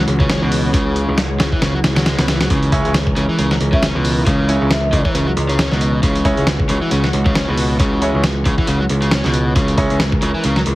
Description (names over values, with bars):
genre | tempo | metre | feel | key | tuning
breakbeat, breaks | 136 BPM | 4/4 | swing 57% on 16ths | C# dorian | A4 = 439 Hz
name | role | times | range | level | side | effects
lush unison pad | sustained chords | 0.0-10.8 s | E3 to A#4 | -24 LUFS | equal | chorus, sidechain pumping
overdriven electric guitar | riff | 0.0-10.6 s | B2 to C#4 | -21 LUFS | equal | tube saturation, vintage 12-bit sampler grit, dub echo
modern bright picked electric bass | bass | 0.0-10.8 s | C#2 | -18 LUFS | equal | tube saturation
dusty soul sampler-style drum kit | drums | 0.1-10.8 s | hi-hat, kick drum, snare drum | -18 LUFS | equal | none
bright grand piano | stabs | 2.7-10.0 s | G#3 to C#5 | -24 LUFS | right 1 dB | vintage 12-bit sampler grit, dub echo
mellow hollow wooden flute | melody | 3.7-5.2 s | E5 | -26 LUFS | equal | old record sound, vintage 12-bit sampler grit, dub echo
room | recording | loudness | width
light reverb | heavily compressed radio sound, vinyl crackle | -14 LUFS | side -18 dB against mid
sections
0.0-10.8 A section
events
none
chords
0.0 C#m